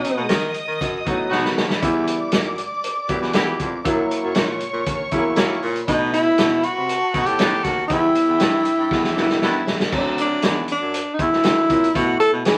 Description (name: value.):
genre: uptempo 1960s-style soul.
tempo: 119 BPM.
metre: 4/4.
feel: straight.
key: E minor.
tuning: A4 = 439 Hz.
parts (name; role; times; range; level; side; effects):
breathy tenor saxophone; melody; 0.0-0.3, 5.9-12.6 s; D4 to A4; -21 LUFS; equal; none.
warm studio string section; second line; 0.0-9.9 s; E4 to D#6; -31 LUFS; equal; none.
warm baby grand piano; accompaniment; 0.0-12.6 s; F#3 to F#5; -27 LUFS; equal; none.
vintage drum kit; drums; 0.0-12.6 s; crash cymbal, hi-hat, kick drum, snare drum; -25 LUFS; equal; none.
warm baritone saxophone; bass; 0.2-12.6 s; D2 to E3; -28 LUFS; equal; none.
warm horn section; second line; 1.1-9.8 s; G3 to G4; -29 LUFS; equal; none.
room: wet studio ambience, RT60 0.5 s.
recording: vinyl crackle.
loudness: -20 LUFS.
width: mono.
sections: 0.0-9.9 A section; 9.9-12.6 B section.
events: drum fill 1.3-1.8, 8.9-9.9.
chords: 0.0 B; 1.8 Em; 3.9 F#7; 5.9 B7; 7.9 Em; 9.9 D7; 11.9 B7sus4.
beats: 0.31 0.81 1.32 | 1.83 2.33 2.84 3.35 | 3.85 4.36 4.86 5.37 | 5.88 6.38 6.89 7.39 | 7.90 8.40 8.91 9.41 | 9.92 10.43 10.93 11.44 | 11.94 12.45.